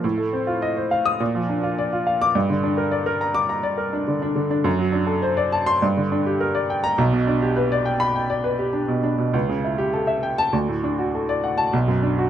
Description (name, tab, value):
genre	classical, virtuoso piano study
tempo	103 BPM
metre	4/4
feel	rubato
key	unclear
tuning	A4 = 440 Hz
part	clear baby grand piano	solo	0.0-12.3 s	B1 to Eb6	-19 LUFS	equal	none
room	light reverb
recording	close, detailed microphones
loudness	-19 LUFS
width	side -10 dB against mid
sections	0.0-12.3 A section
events	none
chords	0.0 F7/A; 1.2 Bb; 2.3 Gm; 4.7 D7/F#; 5.8 Gm; 7.0 G/B; 9.3 A7/C#; 10.5 D; 11.7 Bm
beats	| 0.04 0.62 1.20 1.78 | 2.35 2.92 3.50 4.08 | 4.66 5.22 5.82 6.41 | 6.99 7.56 8.14 8.73 | 9.34 9.93 10.53 11.13 | 11.72